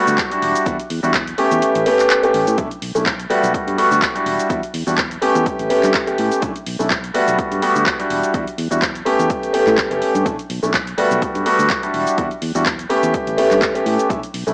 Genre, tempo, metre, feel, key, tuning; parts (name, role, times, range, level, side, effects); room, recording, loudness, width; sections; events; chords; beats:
filtered disco house; 125 BPM; 4/4; swing 55% on 16ths; A4 = 439 Hz
warm concert grand piano; accompaniment; 0.0-14.5 s; G3 to G4; -19 LUFS; equal; phaser, vintage 12-bit sampler grit, sidechain pumping, cassette tape
fingered electric bass; bass; 0.1-14.5 s; E1 to A2; -26 LUFS; equal; tube saturation, sidechain pumping
house drum kit; drums; 0.1-14.5 s; handclaps, hi-hat, shaker; -26 LUFS; equal; sidechain pumping on hats, small room ambience, cassette tape, sidechain pumping on perc
electronic kick drum; drums; 0.2-14.2 s; -27 LUFS; equal; small room ambience, cassette tape
wet spring reverb, RT60 1.3 s; home recording on cassette, small speaker sound; -18 LUFS; mono
0.0-14.5 A section
kick drops out 1.6-2.6
0.4 Em9; 1.6 A9; 2.6 Bm11; 3.5 Gmaj9; 4.3 Em9; 5.5 A9; 6.4 Bm11; 7.4 Gmaj9; 8.1 Em9; 9.3 A9; 10.3 Bm11; 11.2 Gmaj9; 11.9 Em9; 13.1 A9
0.18 | 0.66 1.14 1.62 2.10 | 2.58 3.06 3.54 4.02 | 4.50 4.98 5.46 5.94 | 6.42 6.90 7.38 7.86 | 8.34 8.82 9.30 9.78 | 10.26 10.74 11.22 11.70 | 12.18 12.66 13.14 13.62 | 14.10